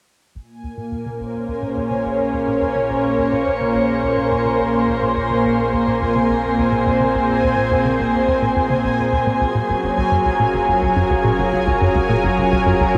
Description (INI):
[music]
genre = ambient, sequencer-driven space music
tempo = 106 BPM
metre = 4/4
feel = straight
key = Bb minor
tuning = A4 = 438 Hz
[part]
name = tight sequencer bass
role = riff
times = 0.3-13.0 s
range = Gb1 to Db3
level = -25 LUFS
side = equal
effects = analog chorus, analog delay
[part]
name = warm sub bass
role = bass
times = 0.3-13.0 s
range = Gb1 to Bb1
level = -36 LUFS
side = equal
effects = none
[part]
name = bubbling stepped-filter texture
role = texture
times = 0.3-13.0 s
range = Ab5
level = -27 LUFS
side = equal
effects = chorus, built-in reverb
[part]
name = lush unison pad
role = sustained chords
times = 0.4-13.0 s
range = Bb2 to C5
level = -20 LUFS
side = equal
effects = chorus
[sound]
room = wet shimmer reverb, RT60 6.7 s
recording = none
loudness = -18 LUFS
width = mono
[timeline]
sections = 0.3-13.0 A section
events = fade-in on analog synth bass 0.3-13.0; fade-in on sub bass 0.3-13.0; filter sweep on analog synth pad 0.3-13.0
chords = 0.3 Bbm7; 9.4 Gbmaj7